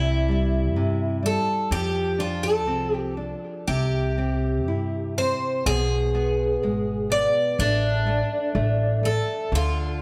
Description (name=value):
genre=fado-style ballad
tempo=62 BPM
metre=2/4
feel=rubato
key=D minor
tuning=A4 = 440 Hz
part: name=picked twelve-string acoustic guitar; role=melody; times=0.0-10.0 s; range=D4 to D5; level=-27 LUFS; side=equal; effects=tape echo
part: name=nylon-string guitar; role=accompaniment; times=0.0-10.0 s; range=B2 to E4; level=-31 LUFS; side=equal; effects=none
part: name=upright bass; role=bass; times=0.0-10.0 s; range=G#1 to G2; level=-28 LUFS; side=equal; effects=none
room=moderate recital hall reverb, RT60 1.6 s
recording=none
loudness=-24 LUFS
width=mono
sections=0.0-10.0 A section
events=none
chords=0.0 C; 1.7 F5; 3.7 C; 5.7 G#dim; 7.6 D5/A